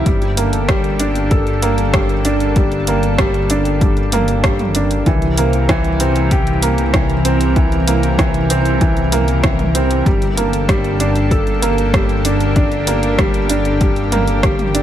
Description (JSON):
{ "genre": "piano and strings electronica", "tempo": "96 BPM", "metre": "4/4", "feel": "straight", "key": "G dorian", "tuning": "A4 = 440 Hz", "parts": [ { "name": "lush unison pad", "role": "sustained chords", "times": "0.0-14.8 s", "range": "D3 to Bb4", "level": "-22 LUFS", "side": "left 1 dB", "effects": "chorus, sidechain pumping" }, { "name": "felt-muted upright piano", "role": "riff", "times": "0.0-14.8 s", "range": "E3 to A4", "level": "-18 LUFS", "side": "right 2 dB", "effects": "digital delay" }, { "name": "dark detuned saw bass", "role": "bass", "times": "0.0-14.8 s", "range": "G1 to C2", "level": "-19 LUFS", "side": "left 1 dB", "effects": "sidechain pumping" }, { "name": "deep house drum kit", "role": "drums", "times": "0.1-14.8 s", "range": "hi-hat, rim click, toms", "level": "-22 LUFS", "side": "equal", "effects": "overdrive" }, { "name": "electronic kick drum", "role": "drums", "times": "0.1-14.6 s", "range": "none", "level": "-17 LUFS", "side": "left 1 dB", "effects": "overdrive" } ], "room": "light reverb, digital ambience", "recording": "none", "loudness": "-13 LUFS", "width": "side -11 dB against mid", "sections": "0.0-14.8 A section", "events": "none", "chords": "0.1 Gmadd9; 5.1 C7; 10.1 Gmadd9", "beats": "| 0.06 0.69 1.31 1.94 | 2.56 3.19 3.81 4.44 | 5.06 5.69 6.31 6.94 | 7.56 8.19 8.81 9.44 | 10.06 10.69 11.31 11.94 | 12.56 13.19 13.81 14.44" }